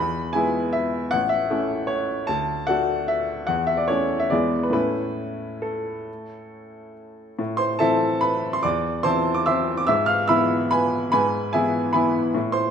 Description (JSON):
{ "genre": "classical, piano waltz", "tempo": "131-159 BPM", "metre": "3/4", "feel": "rubato", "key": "A major, A minor from 7.4 s", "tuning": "A4 = 440 Hz", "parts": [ { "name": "bright upright piano", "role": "solo", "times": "0.0-12.7 s", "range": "A1 to F6", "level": "-20 LUFS", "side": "equal", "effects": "none" } ], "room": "moderate recital hall reverb, RT60 1.5 s", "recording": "none", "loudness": "-20 LUFS", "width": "side -7 dB against mid", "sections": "0.0-7.4 A section; 7.4-12.7 B section", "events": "none", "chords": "0.0 E; 1.1 A; 2.3 D; 3.5 A/E; 4.3 E7; 4.7 A; 7.4 Am; 9.9 E/G#" }